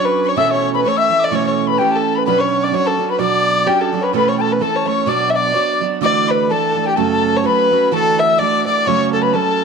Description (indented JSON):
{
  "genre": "celtic folk",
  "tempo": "127 BPM",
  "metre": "2/4",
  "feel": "swing 56% on 8ths",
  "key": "B minor",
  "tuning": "A4 = 440 Hz",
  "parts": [
    { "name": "dark fiddle", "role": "melody", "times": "0.0-9.6 s", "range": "G4 to E5", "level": "-16 LUFS", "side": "left 1 dB", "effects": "none" },
    { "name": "tin whistle", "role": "second line", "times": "0.0-9.6 s", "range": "G5 to E6", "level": "-20 LUFS", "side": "left 12 dB", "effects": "none" },
    { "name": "picked steel-string acoustic guitar", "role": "accompaniment", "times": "0.0-9.6 s", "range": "F#2 to A4", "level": "-19 LUFS", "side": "right 13 dB", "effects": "none" }
  ],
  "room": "moderate spring reverb, RT60 2.0 s",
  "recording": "1960s-style stereo with parts hard left and right",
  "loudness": "-13 LUFS",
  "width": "side -5 dB against mid",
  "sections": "0.0-6.0 A section; 6.0-9.6 B section",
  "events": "none",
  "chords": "0.4 A/B; 2.3 Bmadd9; 4.1 A/B; 5.1 Bm; 6.0 Dadd9; 7.0 F#m; 7.9 Dadd9; 8.9 F#m"
}